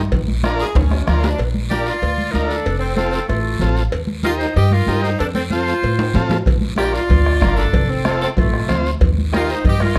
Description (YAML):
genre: latin, cumbia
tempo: 189 BPM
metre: 4/4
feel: straight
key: Bb major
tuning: A4 = 440 Hz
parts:
  - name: bright saxophone section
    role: melody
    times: 0.0-10.0 s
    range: A3 to Ab4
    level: -26 LUFS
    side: equal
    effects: none
  - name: combo organ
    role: accompaniment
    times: 0.0-10.0 s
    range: C4 to C5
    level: -27 LUFS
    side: equal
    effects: none
  - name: upright bass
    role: bass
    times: 0.0-10.0 s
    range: F1 to A2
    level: -22 LUFS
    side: equal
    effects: none
  - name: bombo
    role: percussion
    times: 0.1-1.2, 6.5-10.0 s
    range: none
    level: -22 LUFS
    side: equal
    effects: none
  - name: congas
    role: percussion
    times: 0.1-10.0 s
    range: none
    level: -28 LUFS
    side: equal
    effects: none
  - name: cowbell and timbales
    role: percussion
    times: 0.1-9.8 s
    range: none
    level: -30 LUFS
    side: equal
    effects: none
  - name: guiro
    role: percussion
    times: 0.1-10.0 s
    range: none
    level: -38 LUFS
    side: equal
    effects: none
  - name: bright clarinet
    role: second line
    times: 1.7-10.0 s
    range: F4 to Eb5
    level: -28 LUFS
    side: equal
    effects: none
room: light reverb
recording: none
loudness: -18 LUFS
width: mono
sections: 0.0-1.4 A section; 1.4-10.0 B section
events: saxophone section solo 0.0-1.4; drum fill 0.8-1.4, 6.0-6.5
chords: 0.1 Bb; 2.7 F; 3.9 Eb; 5.2 F; 6.5 Bb; 7.7 F; 9.0 Eb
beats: | 0.12 0.43 0.75 1.07 | 1.39 1.70 2.02 2.34 | 2.66 2.97 3.29 3.61 | 3.93 4.25 4.56 4.88 | 5.20 5.51 5.83 6.15 | 6.47 6.79 7.10 7.42 | 7.74 8.06 8.37 8.69 | 9.01 9.33 9.64 9.96